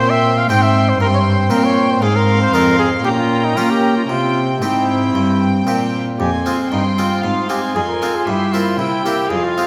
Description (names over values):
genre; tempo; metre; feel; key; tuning
classical, baroque-style concerto movement with solo episodes; 116 BPM; 4/4; straight; F minor; A4 = 440 Hz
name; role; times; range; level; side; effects
clear trumpet; melody; 0.0-9.7 s; Eb4 to G5; -22 LUFS; equal; none
rich chamber violin section; melody; 0.0-9.7 s; G5 to C6; -29 LUFS; equal; none
rich chamber violin section; second line; 0.0-9.7 s; E5 to Ab5; -26 LUFS; equal; none
dark chamber viola section; accompaniment; 0.0-9.7 s; C4 to F4; -24 LUFS; equal; none
harpsichord; accompaniment; 0.0-9.7 s; F2 to G4; -24 LUFS; equal; none
dark chamber cello section; bass; 0.0-9.7 s; F2 to Bb3; -22 LUFS; equal; none
room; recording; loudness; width
wet concert hall reverb, RT60 2.1 s; none; -16 LUFS; mono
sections
0.0-6.2 A section; 6.2-9.7 A section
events
none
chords
0.0 C5; 2.0 Fm/Ab; 3.1 Gdim/Bb; 4.1 C; 6.2 Fm; 8.3 C7/G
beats
0.49 1.00 1.51 | 2.03 2.54 3.05 3.57 | 4.10 4.63 5.15 5.68 | 6.20 6.72 7.25 7.76 | 8.28 8.79 9.31